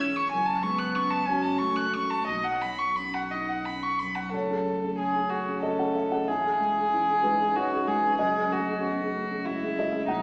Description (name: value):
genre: neoclassical piano and strings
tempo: 86-96 BPM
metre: 3/4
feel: rubato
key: F# dorian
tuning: A4 = 445 Hz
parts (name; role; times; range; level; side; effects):
- rich violin; melody; 0.0-10.2 s; D#4 to F#6; -29 LUFS; equal; none
- warm cello; second line; 0.0-10.2 s; F#3 to E4; -39 LUFS; equal; none
- felt-muted upright piano; accompaniment; 0.0-10.2 s; B1 to F#5; -33 LUFS; equal; none
- pure sine sub bass; bass; 0.0-10.2 s; E1 to B1; -51 LUFS; equal; none
room: wet recital hall reverb, RT60 1.6 s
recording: recorded in a church or concert hall, small speaker sound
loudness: -27 LUFS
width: mono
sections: 0.0-4.3 A section; 4.3-10.2 B section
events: none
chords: 0.3 F#madd9; 2.3 Badd9; 4.3 F#madd9; 6.3 C#m/E; 8.2 F#madd9